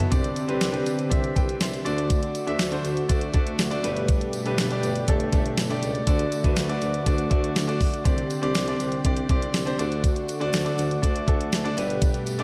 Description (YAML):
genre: 1980s-style pop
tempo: 121 BPM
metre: 4/4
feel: straight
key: unclear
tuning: A4 = 440 Hz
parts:
  - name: clear grand piano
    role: accompaniment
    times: 0.0-12.4 s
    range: G2 to C6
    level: -30 LUFS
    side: equal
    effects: shimmer reverb
  - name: brassy analog pad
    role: sustained chords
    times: 0.0-12.4 s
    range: B2 to G4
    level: -32 LUFS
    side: equal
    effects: chorus, shimmer reverb
  - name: warm tuba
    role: bass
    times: 0.0-12.4 s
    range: G1 to D2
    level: -34 LUFS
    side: equal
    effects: none
  - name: clean 12-bit digital drum machine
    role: drums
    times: 0.0-12.4 s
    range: hi-hat, kick drum, snare drum, toms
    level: -27 LUFS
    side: equal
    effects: gated reverb
  - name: tambourine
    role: percussion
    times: 0.1-12.4 s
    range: none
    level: -45 LUFS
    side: equal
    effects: none
room: light reverb, studio ambience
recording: none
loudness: -24 LUFS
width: mono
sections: 0.1-12.4 A section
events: grand piano fill 11.3-12.0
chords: 0.1 Csus2; 1.9 D; 3.8 Gadd9; 6.1 D; 8.1 Csus2; 9.8 D; 11.8 Gadd9